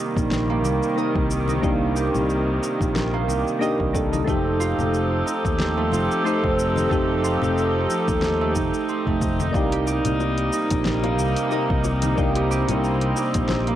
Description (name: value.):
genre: sunset chillout.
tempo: 91 BPM.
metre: 4/4.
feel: swing 56% on 16ths.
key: C dorian.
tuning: A4 = 440 Hz.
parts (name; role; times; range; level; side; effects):
soft electric-piano-like synth keys; accompaniment; 0.0-13.8 s; A3 to D5; -28 LUFS; left 1 dB; chorus, auto-pan, cassette tape, analog delay.
rich chamber string section; sustained chords; 0.0-13.8 s; C3 to A4; -24 LUFS; equal; cassette tape.
concert harp; arpeggios; 0.0-13.8 s; A3 to Eb5; -27 LUFS; right 8 dB; cassette tape, analog delay.
sustaining fretless electric bass; bass; 0.2-13.8 s; F1 to Eb2; -25 LUFS; left 1 dB; none.
deep house drum kit; drums; 0.2-13.8 s; hi-hat, shaker, snare drum; -30 LUFS; left 1 dB; overdrive, cassette tape.
electronic kick drum; drums; 0.2-13.5 s; none; -26 LUFS; left 1 dB; overdrive, cassette tape.
congas and bongos; percussion; 0.6-13.7 s; none; -33 LUFS; left 10 dB; none.
room: moderate booth ambience, RT60 0.2 s.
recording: home recording on cassette.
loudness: -19 LUFS.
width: side -12 dB against mid.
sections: 0.0-13.8 A section.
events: none.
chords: 0.0 Cm7; 4.3 F9; 9.5 Cm7.